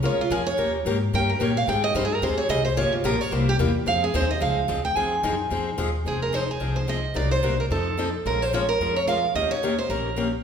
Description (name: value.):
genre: acoustic string swing (jazz manouche).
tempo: 219 BPM.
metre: 4/4.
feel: swing 57% on 8ths.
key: F minor.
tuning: A4 = 440 Hz.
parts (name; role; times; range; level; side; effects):
picked steel-string acoustic guitar; accompaniment; 0.0-10.3 s; C3 to Bb4; -27 LUFS; left 3 dB; none.
upright bass; bass; 0.0-10.3 s; F1 to Bb2; -27 LUFS; equal; none.
picked steel-string acoustic guitar; melody; 0.1-10.3 s; F4 to Ab5; -24 LUFS; right 2 dB; none.
room: wet recital hall reverb, RT60 1.5 s.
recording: recorded in a church or concert hall.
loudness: -21 LUFS.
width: side -7 dB against mid.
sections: 0.0-6.1 A section; 6.1-10.4 B section.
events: steel-string acoustic guitar solo 0.0-6.1.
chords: 0.0 Bbm7; 0.6 Eb7; 1.7 Abmaj7; 2.8 Gm7b5; 3.3 C7; 3.9 Fm7; 7.2 Cm7b5; 7.7 F7; 8.2 Bbm7; 9.3 Eb7.